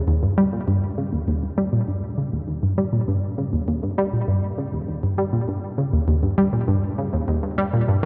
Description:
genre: ambient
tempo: 100 BPM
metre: 4/4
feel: straight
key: unclear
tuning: A4 = 441 Hz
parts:
  - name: analog pluck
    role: solo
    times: 0.1-8.1 s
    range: Eb2 to G3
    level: -22 LUFS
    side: equal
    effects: chorus, delay
room: wet cathedral reverb, RT60 5.9 s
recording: in a vast, echoing space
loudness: -23 LUFS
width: mono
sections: 0.0-8.1 A section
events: none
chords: none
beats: | 0.08 0.68 1.28 1.88 | 2.48 3.08 3.68 4.28 | 4.88 5.48 6.08 6.68 | 7.28 7.88

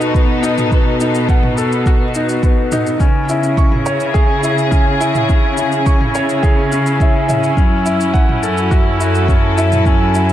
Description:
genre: piano and strings electronica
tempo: 105 BPM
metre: 4/4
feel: straight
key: C# minor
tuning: A4 = 440 Hz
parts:
  - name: rich symphonic string section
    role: sustained chords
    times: 0.0-10.3 s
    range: B2 to A4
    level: -19 LUFS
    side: equal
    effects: sidechain pumping
  - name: felt-muted upright piano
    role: riff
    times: 0.0-10.3 s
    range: B3 to C#6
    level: -18 LUFS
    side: left 1 dB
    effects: tape echo
  - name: rich studio cello section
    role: bass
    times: 0.0-10.3 s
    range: F#2 to C#3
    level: -20 LUFS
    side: equal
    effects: sidechain pumping
  - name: electronic shaker and toms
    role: drums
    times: 0.0-10.3 s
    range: none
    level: -25 LUFS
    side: right 1 dB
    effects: none
  - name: electronic kick drum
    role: drums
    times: 0.1-10.0 s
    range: none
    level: -13 LUFS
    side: equal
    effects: none
room: light reverb, small room ambience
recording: none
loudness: -12 LUFS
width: side -12 dB against mid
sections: 0.0-10.3 A section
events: none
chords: 0.0 B7; 3.0 C#m; 7.6 F#m7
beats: 0.14 | 0.71 1.28 1.86 2.43 | 3.00 3.57 4.14 4.71 | 5.29 5.86 6.43 7.00 | 7.57 8.14 8.71 9.29 | 9.86

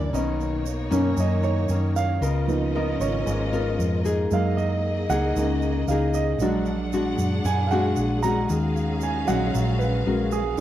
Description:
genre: bossa nova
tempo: 115 BPM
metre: 4/4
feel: straight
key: unclear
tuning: A4 = 440 Hz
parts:
  - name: nylon-string guitar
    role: accompaniment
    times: 0.0-10.6 s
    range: F#2 to A#4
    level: -26 LUFS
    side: left 4 dB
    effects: none
  - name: warm grand piano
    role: accompaniment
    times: 0.0-10.6 s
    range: D#3 to A#5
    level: -27 LUFS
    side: right 6 dB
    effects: none
  - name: warm symphonic string section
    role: sustained chords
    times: 0.0-10.6 s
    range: A#3 to F#5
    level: -31 LUFS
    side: equal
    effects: none
  - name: hollow-body short-scale fingered electric bass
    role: bass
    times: 0.0-10.6 s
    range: G#1 to F#2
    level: -26 LUFS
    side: equal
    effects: none
  - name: egg shaker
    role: percussion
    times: 0.1-10.6 s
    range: none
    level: -44 LUFS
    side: right 21 dB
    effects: none
room: little or no reverb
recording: dry, close 1970s-style studio recording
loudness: -21 LUFS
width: side -12 dB against mid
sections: 0.0-10.6 A section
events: grand piano solo 0.0-10.6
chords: 0.1 Bmaj9; 2.2 C#13; 4.3 F#69; 6.4 A#7b13; 8.5 D#m11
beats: | 0.12 0.65 1.17 1.69 | 2.22 2.74 3.26 3.79 | 4.31 4.83 5.36 5.88 | 6.40 6.93 7.45 7.97 | 8.49 9.02 9.54 10.06 | 10.59

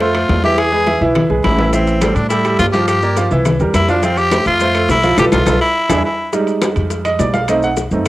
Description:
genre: latin, salsa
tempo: 209 BPM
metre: 4/4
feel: straight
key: unclear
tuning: A4 = 441 Hz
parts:
  - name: growling tenor saxophone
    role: melody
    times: 0.0-6.3 s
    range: C4 to G#4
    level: -16 LUFS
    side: left 1 dB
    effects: cassette tape
  - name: bright baby grand piano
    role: accompaniment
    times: 0.0-8.1 s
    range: E3 to F#5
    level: -17 LUFS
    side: right 2 dB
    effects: cassette tape
  - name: upright bass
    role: bass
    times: 0.0-8.1 s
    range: A1 to A2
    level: -18 LUFS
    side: equal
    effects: none
  - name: bongos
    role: percussion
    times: 0.0-8.1 s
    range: none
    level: -27 LUFS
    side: left 7 dB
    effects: none
  - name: congas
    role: percussion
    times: 0.0-8.1 s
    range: none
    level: -21 LUFS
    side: left 2 dB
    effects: none
  - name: timbales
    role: percussion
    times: 0.0-8.1 s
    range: none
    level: -28 LUFS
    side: right 4 dB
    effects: none
  - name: claves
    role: percussion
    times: 0.1-7.6 s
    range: none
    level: -31 LUFS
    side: left 5 dB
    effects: none
  - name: maracas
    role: percussion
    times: 1.7-8.1 s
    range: none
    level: -32 LUFS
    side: left 6 dB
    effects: none
room: light reverb, small room ambience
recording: home recording on cassette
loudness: -12 LUFS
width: side -16 dB against mid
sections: 0.0-6.3 A section; 6.3-8.1 B section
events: band accent 5.2-6.3; drum fill 5.5-6.3; grand piano solo 6.3-8.1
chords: 0.0 Dm7 (rootless); 0.6 E; 1.7 Am7; 2.9 Gm7; 3.5 C7; 4.0 Fmaj7; 5.2 G13/B (rootless); 5.8 E7; 6.3 Fm9; 7.5 B7b9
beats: 0.00 0.29 | 0.58 0.87 1.15 1.44 | 1.73 2.02 2.30 2.59 | 2.88 3.17 3.45 3.74 | 4.03 4.32 4.61 4.89 | 5.18 5.47 5.76 6.04 | 6.33 6.62 6.91 7.20 | 7.48 7.77 8.06

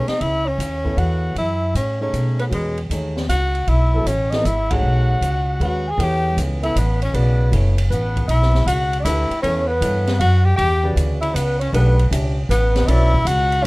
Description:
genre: modal jazz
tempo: 156 BPM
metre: 3/4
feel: swing 66% on 8ths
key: E dorian from 6.0 s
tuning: A4 = 435 Hz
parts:
  - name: clear tenor saxophone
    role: melody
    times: 0.0-13.7 s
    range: F#3 to G#4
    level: -24 LUFS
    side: left 2 dB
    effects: none
  - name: dark alto saxophone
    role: second line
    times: 0.0-13.7 s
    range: F#4 to G#5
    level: -24 LUFS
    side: right 1 dB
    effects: none
  - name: warm grand piano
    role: accompaniment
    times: 0.0-13.7 s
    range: C#3 to E5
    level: -27 LUFS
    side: equal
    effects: none
  - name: upright bass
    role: bass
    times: 0.0-13.7 s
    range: F#1 to B2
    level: -18 LUFS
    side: equal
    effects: none
  - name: open jazz drum kit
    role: drums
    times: 0.1-13.6 s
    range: hi-hat, kick drum, ride cymbal, snare drum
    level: -29 LUFS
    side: equal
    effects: none
room: little or no reverb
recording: rough home demo mix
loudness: -16 LUFS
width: side -23 dB against mid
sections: 0.0-6.0 A section; 6.0-13.7 B section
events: band accent 4.6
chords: 0.0 F#m7; 1.4 Eadd9; 6.0 Em69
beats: | 0.21 0.59 0.98 | 1.36 1.75 2.14 | 2.52 2.91 3.29 | 3.68 4.06 4.45 | 4.83 5.22 5.60 | 5.99 6.37 6.75 | 7.14 7.52 7.91 | 8.29 8.67 9.05 | 9.44 9.82 10.20 | 10.59 10.97 11.35 | 11.73 12.12 12.50 | 12.88 13.27 13.65

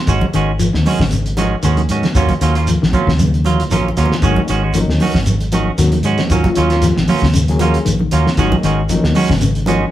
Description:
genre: afrobeat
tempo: 116 BPM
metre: 4/4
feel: swing 55% on 16ths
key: unclear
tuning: A4 = 438 Hz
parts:
  - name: semi-hollow electric guitar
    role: arpeggios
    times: 0.0-9.9 s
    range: Db3 to Gb3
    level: -21 LUFS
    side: left 5 dB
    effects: none
  - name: semi-hollow electric guitar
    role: stabs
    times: 0.1-9.8 s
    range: Eb3 to Gb4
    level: -19 LUFS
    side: right 5 dB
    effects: none
  - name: fingered electric bass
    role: bass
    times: 0.1-9.8 s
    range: Ab1 to Ab2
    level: -17 LUFS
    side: equal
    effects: none
  - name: cloth-damped thuddy drum kit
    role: drums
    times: 0.1-9.8 s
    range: hi-hat, kick drum, snare drum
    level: -20 LUFS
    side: equal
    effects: none
  - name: shekere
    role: percussion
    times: 0.1-9.8 s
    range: none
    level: -23 LUFS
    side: equal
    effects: none
  - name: congas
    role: percussion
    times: 0.2-9.8 s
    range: none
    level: -21 LUFS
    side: right 3 dB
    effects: none
  - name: overdriven reed electric piano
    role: accompaniment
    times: 4.2-9.8 s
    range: Gb3 to Ab4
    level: -21 LUFS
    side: left 3 dB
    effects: fast tremolo
room: moderate studio reverb, RT60 0.8 s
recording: band playing live in one room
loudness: -12 LUFS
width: side -13 dB against mid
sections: 0.0-9.9 A section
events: drum fill 3.2-4.2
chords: 0.1 Ab7sus4; 2.2 Ebm9; 4.2 Ab7sus4; 6.3 Ebm9; 8.4 Ab7sus4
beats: | 0.08 0.60 1.12 1.64 | 2.16 2.68 3.20 3.72 | 4.24 4.75 5.27 5.79 | 6.31 6.83 7.35 7.87 | 8.38 8.90 9.42

